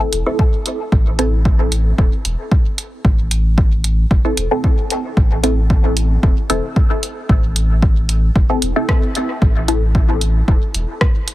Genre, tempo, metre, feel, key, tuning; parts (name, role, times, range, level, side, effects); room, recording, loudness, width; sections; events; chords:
dub techno; 113 BPM; 4/4; straight; A minor; A4 = 436 Hz
filtered dub chord stab; stabs; 0.0-9.8 s; C4 to A4; -21 LUFS; left 1 dB; phaser, sidechain pumping, dub echo
soft dub sub bass; bass; 0.1-10.8 s; E1 to A1; -17 LUFS; equal; sidechain pumping
punchy analog drum machine; drums; 0.1-11.3 s; hi-hat, rim click; -21 LUFS; right 1 dB; dub echo
electronic kick drum; drums; 0.4-11.1 s; -14 LUFS; equal
little or no reverb; heavily compressed radio sound; -13 LUFS; side -16 dB against mid
0.0-11.3 A section
0.0 Am